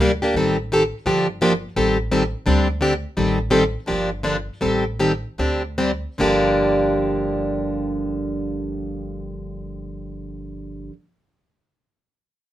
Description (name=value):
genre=acoustic string swing (jazz manouche)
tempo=144-170 BPM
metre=4/4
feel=swing 61% on 8ths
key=G minor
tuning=A4 = 438 Hz
part: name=picked plugged-in steel-string acoustic guitar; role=accompaniment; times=0.0-10.9 s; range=G2 to A4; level=-20 LUFS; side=equal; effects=none
part: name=upright bass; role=bass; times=0.0-10.9 s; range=G1 to D2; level=-28 LUFS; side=equal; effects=none
room=moderate studio reverb, RT60 0.5 s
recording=minimal, uncompressed stereo recording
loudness=-18 LUFS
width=side -13 dB against mid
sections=0.3-6.2 A section; 6.2-9.5 B section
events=slowing down 3.2-6.2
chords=0.3 Am7b5; 1.1 Gm7; 1.8 Am7b5; 2.5 D7sus4; 3.2 Am7b5; 3.9 Gm7; 4.6 Am7b5; 5.4 D7sus4; 6.2 Gm7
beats=| 0.35 0.70 1.05 1.41 | 1.76 2.12 2.47 2.82 | 3.18 3.53 3.89 4.25 | 4.62 5.00 5.38 5.78 | 6.19 6.61 7.03 7.45 | 7.86 8.28 8.70 9.12